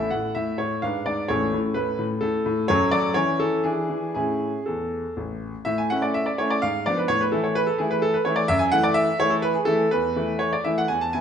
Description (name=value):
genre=classical-period piano sonatina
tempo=116-131 BPM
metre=3/4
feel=rubato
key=A major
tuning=A4 = 439 Hz
part: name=bright grand piano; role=solo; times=0.0-11.2 s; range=A1 to A5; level=-21 LUFS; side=equal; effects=none
room=wet recital hall reverb, RT60 1.5 s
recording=nothing above 10.8 kHz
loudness=-21 LUFS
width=side -8 dB against mid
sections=0.0-5.7 A section; 5.7-11.2 B section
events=none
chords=0.0 A5; 0.8 G#dim7; 1.3 A; 2.7 F#m; 3.2 A/E; 3.7 E7; 4.2 A; 6.6 G#dim7; 7.1 A5; 8.5 F#m7; 9.9 Esus4